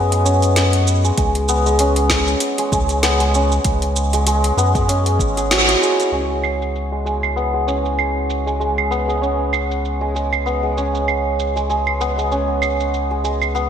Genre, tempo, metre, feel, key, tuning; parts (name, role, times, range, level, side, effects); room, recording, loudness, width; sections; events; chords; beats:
organic downtempo; 97 BPM; 4/4; swing 56% on 16ths; C# minor; A4 = 440 Hz
santur; arpeggios; 0.0-13.7 s; G#3 to G#4; -19 LUFS; equal; low-pass filter, ping-pong delay
warm sub bass; bass; 0.0-13.7 s; G#1 to F#2; -20 LUFS; equal; sidechain pumping
afro-pop drum kit; drums; 0.1-13.7 s; claves, hi-hat, shaker, snare drum; -22 LUFS; right 2 dB; low-pass filter on perc, studio reverb, low-pass filter on hats, low-pass filter on snare
electronic kick drum; drums; 1.2-5.3 s; -22 LUFS; equal; studio reverb
wet lush hall reverb, RT60 1.9 s, digital ambience; bright 1980s-style digital production; -16 LUFS; side -8 dB against mid
0.0-6.1 A section; 6.1-13.7 B section
band accent 5.5-5.8; filter sweep on santur 6.1-13.7
0.0 C#7(no3); 6.1 C#m7
0.56 | 1.18 1.79 2.41 3.03 | 3.65 4.27 4.89 5.50 | 6.12 6.74 7.36 7.98 | 8.60 9.22 9.84 10.45 | 11.07 11.69 12.31 12.93 | 13.55